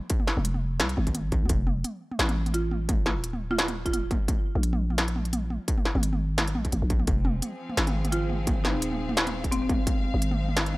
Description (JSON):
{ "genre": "half-time drum and bass", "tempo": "172 BPM", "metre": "4/4", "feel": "swing 55% on 16ths, half-time", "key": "F minor", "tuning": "A4 = 436 Hz", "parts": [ { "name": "electronic kick drum", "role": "drums", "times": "0.1-9.9 s", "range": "none", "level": "-27 LUFS", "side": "equal", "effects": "distortion, overdrive" }, { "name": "industrial drum kit", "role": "drums", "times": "0.1-10.8 s", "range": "hi-hat, snare drum, toms", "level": "-29 LUFS", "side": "equal", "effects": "overdrive" }, { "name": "growling 808-style bass", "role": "bass", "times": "0.4-10.8 s", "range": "Eb1 to Eb2", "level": "-28 LUFS", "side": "equal", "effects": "none" }, { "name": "buzzing marimba with medium hard mallets", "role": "melody", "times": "2.5-4.0, 8.1-9.7 s", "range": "C4 to F4", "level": "-32 LUFS", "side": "right 1 dB", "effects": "analog delay" }, { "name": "warm studio string section", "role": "sustained chords", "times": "7.1-10.8 s", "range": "F3 to F5", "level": "-35 LUFS", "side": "left 1 dB", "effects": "sidechain pumping" } ], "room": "little or no reverb", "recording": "dry, gritty hardware recording", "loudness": "-24 LUFS", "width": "side -20 dB against mid", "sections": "0.0-10.8 A section", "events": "none", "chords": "0.0 Ab6; 1.5 F7; 4.3 Absus2; 7.1 Fm; 9.9 Ab6" }